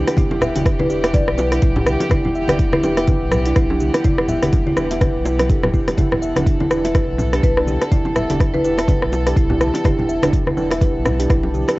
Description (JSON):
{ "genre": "afro house", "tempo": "124 BPM", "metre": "4/4", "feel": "swing 58% on 16ths", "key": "E minor", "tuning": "A4 = 441 Hz", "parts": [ { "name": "warm studio string section", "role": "sustained chords", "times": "0.0-11.8 s", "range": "E3 to F#5", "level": "-29 LUFS", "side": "equal", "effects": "sidechain pumping" }, { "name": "kalimba", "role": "arpeggios", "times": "0.0-11.7 s", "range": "E4 to E5", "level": "-22 LUFS", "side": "equal", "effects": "sidechain pumping, analog delay" }, { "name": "deep mellow chord stab", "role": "stabs", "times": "0.0-11.8 s", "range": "D4 to A4", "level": "-27 LUFS", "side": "right 2 dB", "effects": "chorus, phaser, cassette tape, sidechain pumping, analog delay" }, { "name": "warm sub bass", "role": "bass", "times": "0.0-11.6 s", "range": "E1 to B1", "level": "-25 LUFS", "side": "equal", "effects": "sidechain pumping" }, { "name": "afro-pop drum kit", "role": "drums", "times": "0.1-11.8 s", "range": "hi-hat, rim click, shaker", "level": "-21 LUFS", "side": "equal", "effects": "small room ambience, cassette tape" }, { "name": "bongos", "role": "percussion", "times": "0.1-11.8 s", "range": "none", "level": "-28 LUFS", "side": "equal", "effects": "none" }, { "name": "electronic kick drum", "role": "drums", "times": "0.2-11.4 s", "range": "none", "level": "-18 LUFS", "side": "equal", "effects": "small room ambience, cassette tape" }, { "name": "congas", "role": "percussion", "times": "0.2-11.7 s", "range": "none", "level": "-25 LUFS", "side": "left 1 dB", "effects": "none" }, { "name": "marimba with medium hard mallets", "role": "melody", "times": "0.8-2.1, 7.4-8.7 s", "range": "B4 to D5", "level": "-26 LUFS", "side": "left 2 dB", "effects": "analog delay" } ], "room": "light reverb", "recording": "home recording on cassette, nothing above 7.8 kHz", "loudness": "-15 LUFS", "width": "side -20 dB against mid", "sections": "0.0-11.8 A section", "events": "none", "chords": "0.0 Em7" }